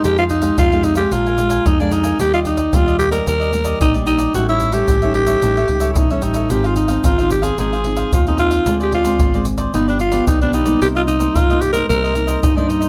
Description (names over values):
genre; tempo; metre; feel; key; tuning
samba and choro; 111 BPM; 4/4; straight; C minor; A4 = 440 Hz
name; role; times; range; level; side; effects
growling alto saxophone; melody; 0.0-12.9 s; C#4 to Bb4; -19 LUFS; equal; none
cavaquinho; accompaniment; 0.0-12.9 s; D4 to Ab5; -29 LUFS; equal; none
nylon-string guitar; accompaniment; 0.0-12.9 s; F2 to G4; -25 LUFS; equal; none
fingered electric bass with an envelope filter; bass; 0.0-12.9 s; G1 to G2; -24 LUFS; equal; none
egg shaker, surdo and pandeiro; percussion; 0.0-12.9 s; none; -23 LUFS; equal; none
room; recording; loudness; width
moderate small room reverb, RT60 0.5 s; none; -16 LUFS; mono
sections
0.0-12.9 A section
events
none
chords
0.0 Fm9; 1.1 Bb6; 2.2 Ebmaj7; 4.3 A7#11; 6.5 Ab6; 8.7 Dm7b5; 9.7 G7; 10.8 Cm7